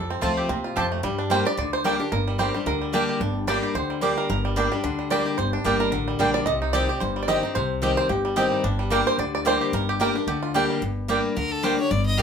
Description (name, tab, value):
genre	bluegrass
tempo	221 BPM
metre	4/4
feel	swing 56% on 8ths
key	G minor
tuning	A4 = 440 Hz
part	bluegrass banjo	melody	0.0-10.8 s	D3 to Eb5	-26 LUFS	right 3 dB	none
part	picked steel-string acoustic guitar	accompaniment	0.0-12.2 s	F2 to G4	-26 LUFS	left 3 dB	none
part	upright bass	bass	0.0-12.2 s	G1 to G2	-29 LUFS	equal	none
part	mandolin	stabs	0.2-12.2 s	Bb3 to A5	-26 LUFS	right 4 dB	none
part	clear fiddle	melody	11.4-12.2 s	A4 to F5	-26 LUFS	equal	none
room	moderate studio reverb, RT60 0.5 s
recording	band playing live in one room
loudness	-21 LUFS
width	side -7 dB against mid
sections	0.0-2.1 A section; 2.1-10.8 A section; 10.8-12.2 A section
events	five-string banjo solo 0.0-10.8; fiddle solo 10.8-12.2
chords	0.0 F; 1.0 Gm; 6.5 Cm; 8.6 Gm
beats	0.22 0.49 0.76 | 1.03 1.30 1.58 1.85 | 2.12 2.39 2.66 2.94 | 3.21 3.48 3.75 4.02 | 4.29 4.57 4.84 5.11 | 5.38 5.65 5.93 6.20 | 6.47 6.74 7.01 7.29 | 7.56 7.83 8.10 8.37 | 8.64 8.91 9.19 9.46 | 9.73 10.00 10.27 10.55 | 10.82 11.09 11.36 11.63 | 11.91 12.18